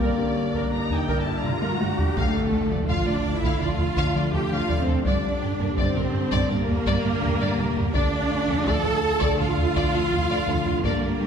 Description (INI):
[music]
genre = cinematic, hybrid orchestral and electronic film score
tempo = 83 BPM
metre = 4/4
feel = straight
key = D minor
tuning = A4 = 439 Hz
[part]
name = warm studio violin section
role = melody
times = 0.0-11.3 s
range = F4 to Bb5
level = -31 LUFS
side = left 4 dB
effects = none
[part]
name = rich symphonic violin section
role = second line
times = 0.0-11.3 s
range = A4 to A5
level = -34 LUFS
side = left 2 dB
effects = none
[part]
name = warm symphonic viola section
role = accompaniment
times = 0.0-11.3 s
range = A3 to D5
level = -32 LUFS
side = right 2 dB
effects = none
[part]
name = dark French horn section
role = sustained chords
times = 0.0-11.3 s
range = Bb3 to G4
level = -34 LUFS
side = left 4 dB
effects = none
[part]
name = warbly tape-like pad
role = sustained chords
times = 0.0-11.3 s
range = D3 to D5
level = -33 LUFS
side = left 1 dB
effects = chorus, built-in reverb
[part]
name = warm trombone section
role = sustained chords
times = 0.0-11.3 s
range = D3 to A3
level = -35 LUFS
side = right 1 dB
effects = none
[part]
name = harp-like synth pluck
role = arpeggios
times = 0.0-11.3 s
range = D3 to D4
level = -34 LUFS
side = left 2 dB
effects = none
[part]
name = smooth synth bass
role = riff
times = 0.0-11.3 s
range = D2 to G3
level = -33 LUFS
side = right 2 dB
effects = none
[part]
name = dark symphonic cello section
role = bass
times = 0.0-11.3 s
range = G2 to A4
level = -28 LUFS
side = right 2 dB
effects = none
[part]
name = warm symphonic double bass section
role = bass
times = 0.0-11.3 s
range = G1 to G2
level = -30 LUFS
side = right 2 dB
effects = none
[part]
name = taiko ensemble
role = drums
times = 0.0-11.3 s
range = none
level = -28 LUFS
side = equal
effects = none
[part]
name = riser and impact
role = sound effects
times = 0.0-5.1 s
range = none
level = -32 LUFS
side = equal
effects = none
[sound]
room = wet scoring stage reverb, RT60 1.9 s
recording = heard from further back in the room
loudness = -21 LUFS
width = side -7 dB against mid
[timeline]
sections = 0.0-2.2 A section; 2.2-11.3 B section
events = riser 0.0-2.2; drum fill 1.4-2.2; impact 2.2-5.1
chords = 0.0 Gm; 2.2 Dm; 5.1 Gm; 7.9 Dm